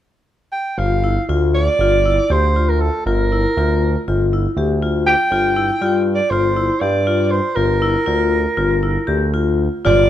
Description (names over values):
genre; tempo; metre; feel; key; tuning
contemporary instrumental, chamber music in an uneven meter; 238 BPM (eighths); 9/8; straight; G dorian; A4 = 440 Hz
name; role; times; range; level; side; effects
mellow soprano saxophone; melody; 0.5-10.1 s; A4 to G5; -18 LUFS; right 3 dB; none
vibraphone with hard mallets; arpeggios; 0.8-10.0 s; E4 to G4; -20 LUFS; left 6 dB; none
smooth synth bass; bass; 0.8-10.1 s; G1 to G2; -18 LUFS; right 1 dB; none
frame drum; percussion; 9.9-10.1 s; none; -20 LUFS; right 4 dB; none
room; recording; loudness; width
light reverb; dark, warm production; -15 LUFS; side -11 dB against mid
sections
0.8-9.9 A section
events
none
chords
0.0 N.C.; 0.8 Gm7; 5.3 Csus4/G; 7.6 G5